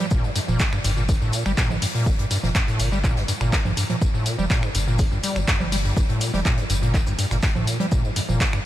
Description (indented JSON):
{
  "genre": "acid house",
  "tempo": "123 BPM",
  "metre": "4/4",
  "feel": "straight",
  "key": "G minor",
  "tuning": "A4 = 439 Hz",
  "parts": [
    { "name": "acid bass, square", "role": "riff", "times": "0.0-8.6 s", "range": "G2 to G3", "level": "-24 LUFS", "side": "equal", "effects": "overdrive, wide subtle chorus, cassette tape, sidechain pumping, ping-pong delay" },
    { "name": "punchy analog drum machine", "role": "drums", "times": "0.0-8.6 s", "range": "congas, finger snaps, handclaps, hi-hat, tambourine", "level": "-26 LUFS", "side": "right 1 dB", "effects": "none" },
    { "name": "warm sub bass", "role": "bass", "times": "0.1-8.4 s", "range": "F1 to G1", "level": "-26 LUFS", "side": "equal", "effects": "sidechain pumping" },
    { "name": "electronic kick drum", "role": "drums", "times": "0.1-8.5 s", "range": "none", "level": "-22 LUFS", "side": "equal", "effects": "none" },
    { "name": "swinging big-band drum kit", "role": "drums", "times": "0.1-8.5 s", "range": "hi-hat, shaker, snare drum", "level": "-36 LUFS", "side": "left 1 dB", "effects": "high-pass filter on hats, high-pass filter on snare, high-pass filter on perc, high-pass filter on room" }
  ],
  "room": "light reverb, small room ambience",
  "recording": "none",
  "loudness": "-19 LUFS",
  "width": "side -13 dB against mid",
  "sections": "0.0-8.7 A section",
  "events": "none",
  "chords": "0.0 Gm"
}